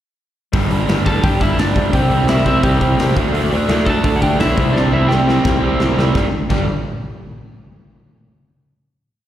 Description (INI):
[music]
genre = punk rock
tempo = 171 BPM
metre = 4/4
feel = straight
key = unclear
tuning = A4 = 441 Hz
[part]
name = distorted electric guitar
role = riff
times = 0.5-6.6 s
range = G2 to D4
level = -20 LUFS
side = right 7 dB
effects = distortion, slapback echo
[part]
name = raw garage guitar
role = riff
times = 0.5-6.6 s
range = G2 to D4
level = -23 LUFS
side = left 8 dB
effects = overdrive, slapback echo
[part]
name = modern bright picked electric bass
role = bass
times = 0.5-6.7 s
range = G1 to D2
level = -18 LUFS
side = left 1 dB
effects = none
[part]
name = big rock drum kit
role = drums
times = 0.5-6.6 s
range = crash cymbal, hi-hat, kick drum, snare drum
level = -19 LUFS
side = equal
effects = none
[part]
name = lightly driven lead guitar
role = melody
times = 1.1-5.6 s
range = D4 to A5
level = -21 LUFS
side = equal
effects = slapback echo, digital delay
[sound]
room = little or no reverb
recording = live gig heard through the venue's PA, recital hall reverb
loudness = -13 LUFS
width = side -12 dB against mid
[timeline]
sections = 0.5-6.1 verse; 6.1-7.5 final chord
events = drum fill 4.7-6.1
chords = 0.5 G5; 1.9 C; 3.2 D5; 4.6 C; 6.1 G5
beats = | 0.53 0.88 1.23 1.58 | 1.93 2.28 2.63 2.98 | 3.33 3.68 4.03 4.38 | 4.73 5.08 5.43 5.79 | 6.14 6.49